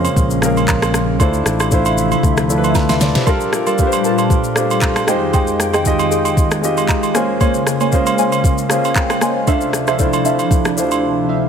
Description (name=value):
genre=amapiano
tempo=116 BPM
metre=4/4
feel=swing 55% on 16ths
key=unclear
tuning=A4 = 438 Hz
part: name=dark baby grand piano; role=accompaniment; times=0.0-11.5 s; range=Ab3 to C6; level=-18 LUFS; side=equal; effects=none
part: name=hollow soft pad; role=sustained chords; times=0.0-11.5 s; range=D2 to G5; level=-21 LUFS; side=equal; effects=ensemble chorus, sidechain pumping
part: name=fingered electric bass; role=bass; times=0.0-3.1 s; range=A1 to D2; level=-19 LUFS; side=equal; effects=none
part: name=smooth R&B drum kit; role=drums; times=0.0-11.0 s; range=handclaps, kick drum, rim click, shaker, snare drum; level=-18 LUFS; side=equal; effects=none
part: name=agogo bells and woodblock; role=percussion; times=0.0-11.0 s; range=none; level=-24 LUFS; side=right 8 dB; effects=none
part: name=deep mellow chord stab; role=stabs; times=3.3-11.4 s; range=G3 to A5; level=-21 LUFS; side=right 1 dB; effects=chorus, phaser, tape echo
room=light reverb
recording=none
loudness=-13 LUFS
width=side -7 dB against mid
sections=0.0-11.5 A section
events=drum fill 2.8-3.3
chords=0.0 Bbm9; 1.2 Dm9; 3.3 Gm9; 5.1 Fm9; 7.1 Bbm9; 9.5 Dm9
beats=0.17 0.68 | 1.20 1.72 2.23 2.75 | 3.27 3.79 4.30 4.82 | 5.34 5.86 6.37 6.89 | 7.41 7.92 8.44 8.96 | 9.47 9.99 10.51 11.03